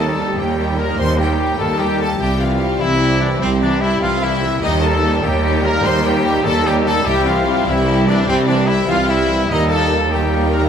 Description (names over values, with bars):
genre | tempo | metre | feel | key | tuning
cinematic | 99 BPM (dotted quarters) | 12/8 | straight | unclear | A4 = 440 Hz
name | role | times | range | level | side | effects
bright symphonic violin section | melody | 0.0-10.7 s | C5 to C6 | -27 LUFS | left 4 dB | none
warm symphonic violin section | second line | 0.0-10.7 s | Bb3 to Bb4 | -25 LUFS | left 4 dB | none
rich symphonic viola section | accompaniment | 0.0-10.7 s | Eb3 to Bb3 | -24 LUFS | right 1 dB | none
clear French horn section | sustained chords | 0.0-10.7 s | G3 to G4 | -24 LUFS | left 5 dB | none
warm trombone section | sustained chords | 0.0-10.7 s | Bb2 to G3 | -27 LUFS | right 3 dB | none
mellow trumpet section | stabs | 0.0-10.6 s | C4 to C5 | -20 LUFS | equal | none
rich symphonic cello section | bass | 0.0-10.7 s | C2 to Eb2 | -22 LUFS | right 2 dB | none
rich symphonic double bass section | bass | 0.0-10.7 s | C2 to Eb2 | -21 LUFS | right 3 dB | none
room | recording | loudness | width
wet scoring stage reverb, RT60 1.6 s | none | -14 LUFS | side -8 dB against mid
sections
0.0-10.7 A section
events
none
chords
0.0 Eb; 2.2 C; 4.6 Eb; 7.1 C; 9.5 Eb